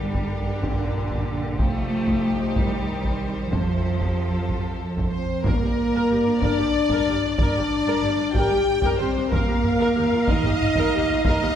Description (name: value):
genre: cinematic, epic orchestral film score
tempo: 62 BPM (dotted quarters)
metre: 6/8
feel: straight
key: unclear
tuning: A4 = 445 Hz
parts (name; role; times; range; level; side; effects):
- warm symphonic violin section; melody; 0.0-11.6 s; Bb4 to G5; -33 LUFS; left 3 dB; none
- warm studio violin section; second line; 0.0-11.6 s; G4 to G5; -30 LUFS; left 1 dB; none
- warm symphonic viola section; accompaniment; 0.0-11.6 s; D4 to F5; -31 LUFS; right 1 dB; none
- warm French horn section; sustained chords; 0.0-11.6 s; Bb2 to G4; -24 LUFS; left 1 dB; none
- rich symphonic double bass section; bass; 0.0-11.3 s; G1 to F2; -29 LUFS; right 2 dB; none
- warm studio cello section; bass; 0.0-11.5 s; Eb2 to A3; -30 LUFS; right 1 dB; none
- taiko ensemble; drums; 0.1-11.6 s; none; -26 LUFS; equal; none
room: wet scoring stage reverb, RT60 1.7 s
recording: heard from further back in the room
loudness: -20 LUFS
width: side -9 dB against mid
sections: 0.0-5.5 A section; 5.5-11.6 B section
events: none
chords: 0.0 Gm; 1.6 Cm; 3.5 F; 5.5 Gm; 9.3 Ebadd9